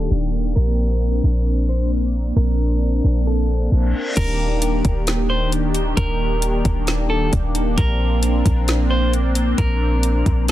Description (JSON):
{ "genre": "hip hop, atmospheric cloud-rap", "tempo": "133 BPM", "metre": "4/4", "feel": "half-time", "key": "Eb major", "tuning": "A4 = 439 Hz", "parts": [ { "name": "clean electric guitar", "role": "melody", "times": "0.0-10.5 s", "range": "A4 to C5", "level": "-27 LUFS", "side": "equal", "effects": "low-pass filter, digital delay" }, { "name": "warm analog pad", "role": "sustained chords", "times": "0.0-10.5 s", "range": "Eb3 to G4", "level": "-23 LUFS", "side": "equal", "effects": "chorus, sidechain pumping" }, { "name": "warm 808-style bass", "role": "bass", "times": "0.0-10.5 s", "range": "Eb1 to Bb1", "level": "-19 LUFS", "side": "equal", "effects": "none" }, { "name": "reverse cymbal", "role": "sound effects", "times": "3.8-4.2 s", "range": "none", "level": "-29 LUFS", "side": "left 2 dB", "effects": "none" }, { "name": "smooth R&B drum kit", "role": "drums", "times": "4.2-10.5 s", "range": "crash cymbal, hi-hat, kick drum, snare drum", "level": "-22 LUFS", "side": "equal", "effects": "overdrive" } ], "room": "digital ambience", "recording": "dense, heavily limited modern master, low-pass filter", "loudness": "-16 LUFS", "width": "side -14 dB against mid", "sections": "0.0-4.2 A section; 4.2-10.5 B section", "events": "filter sweep 0.0-4.2; reverse cymbal 3.8-4.2", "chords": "0.0 Ebmaj7; 0.6 Bbadd9; 4.2 Ebmaj7; 7.8 Bbadd9" }